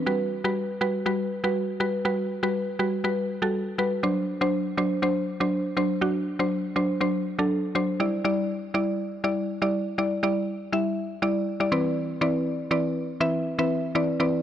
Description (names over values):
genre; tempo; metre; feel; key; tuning
pop; 121 BPM; 4/4; straight; E minor; A4 = 440 Hz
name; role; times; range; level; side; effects
mallet-like synth pluck; solo; 0.1-14.4 s; E3 to E5; -24 LUFS; equal; chorus
room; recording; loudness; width
light reverb; dry, gritty hardware recording, cassette tape; -24 LUFS; side -10 dB against mid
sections
0.0-8.0 A section; 8.0-14.4 B section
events
build-up 8.0-14.4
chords
0.1 Gmaj7; 4.0 D7; 8.0 Em7; 11.7 Cmaj9/E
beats
| 0.07 0.56 1.06 1.55 | 2.05 2.55 3.04 3.54 | 4.03 4.53 5.03 5.52 | 6.02 6.51 7.01 7.50 | 8.00 8.50 8.99 9.49 | 9.98 10.48 10.97 11.47 | 11.97 12.46 12.96 13.46 | 13.95